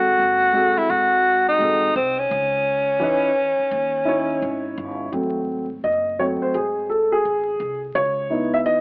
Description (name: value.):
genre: hip hop.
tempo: 85 BPM.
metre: 4/4.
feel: swing 65% on 16ths.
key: unclear.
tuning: A4 = 440 Hz.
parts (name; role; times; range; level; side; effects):
breathy tenor saxophone; melody; 0.0-4.8 s; B#3 to F#4; -17 LUFS; equal; none.
dark upright piano; accompaniment; 0.0-8.8 s; E3 to E5; -21 LUFS; equal; none.
upright bass; bass; 0.0-8.8 s; F#1 to E2; -36 LUFS; equal; none.
room: moderate plate reverb, RT60 2.5 s.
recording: worn, warbling old tape, cassette tape, vinyl crackle, warbly pitch drift, AM radio sound.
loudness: -18 LUFS.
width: side -37 dB against mid.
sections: 0.0-5.1 A section; 5.1-8.8 B section.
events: upright piano solo 5.1-8.8.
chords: 0.0 G#7b9; 2.3 C#madd9; 5.1 G#7b9; 8.0 C#m9.